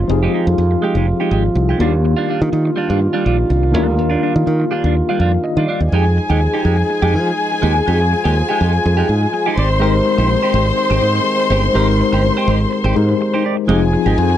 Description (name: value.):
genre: disco.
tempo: 124 BPM.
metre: 4/4.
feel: straight.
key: F dorian.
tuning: A4 = 441 Hz.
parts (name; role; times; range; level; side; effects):
clean electric guitar; accompaniment; 0.0-14.3 s; G3 to D5; -22 LUFS; right 5 dB; phaser.
mellow tine electric piano; accompaniment; 0.0-5.9, 9.8-14.4 s; Eb3 to F5; -19 LUFS; left 4 dB; overdrive, medium stereo tremolo.
mellow French horn section; sustained chords; 0.0-13.6 s; Eb3 to F4; -22 LUFS; right 2 dB; none.
modern bright fingered electric bass; bass; 0.0-14.3 s; F1 to F3; -16 LUFS; right 1 dB; none.
warm studio string section; second line; 5.9-14.4 s; Ab4 to C6; -18 LUFS; left 3 dB; none.
room: little or no reverb.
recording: dry, close 1970s-style studio recording.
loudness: -13 LUFS.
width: side -11 dB against mid.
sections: 0.0-5.9 A section; 5.9-13.7 B section.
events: tine electric piano fill 5.0-5.9; break 13.2-13.7.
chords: 0.0 Fm9; 1.8 Ebmaj9; 5.9 Fm9; 9.6 Abmaj7; 13.7 Fm9.